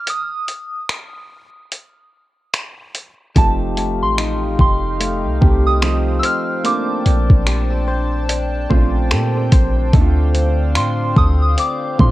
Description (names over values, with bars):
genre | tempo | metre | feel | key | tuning
contemporary R&B | 73 BPM | 4/4 | swing 58% on 16ths | unclear | A4 = 440 Hz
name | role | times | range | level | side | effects
soft synth bell | melody | 0.0-12.1 s | A5 to F6 | -22 LUFS | right 1 dB | chorus, phaser, cassette tape, tape echo
dusty soul sampler-style drum kit | drums | 0.1-12.1 s | finger snaps, hi-hat, kick drum | -16 LUFS | equal | overdrive, cassette tape
warm baby grand piano | accompaniment | 3.4-12.1 s | A3 to C5 | -25 LUFS | right 7 dB | cassette tape
chorused pulse-width pad | sustained chords | 3.4-12.1 s | D4 to A5 | -27 LUFS | right 1 dB | cassette tape
direct-recorded clean electric guitar | arpeggios | 3.4-12.1 s | D3 to C5 | -25 LUFS | left 7 dB | cassette tape, tape echo
clean 808-style bass | bass | 3.4-12.1 s | F1 to Bb2 | -17 LUFS | equal | none
room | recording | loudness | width
light reverb, digital ambience | home recording on cassette | -14 LUFS | side -16 dB against mid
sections
0.0-12.1 A section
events
break 0.0-3.4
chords
0.0 N.C.; 3.4 F9; 5.8 F7; 6.6 Bbmaj9; 9.9 Dm7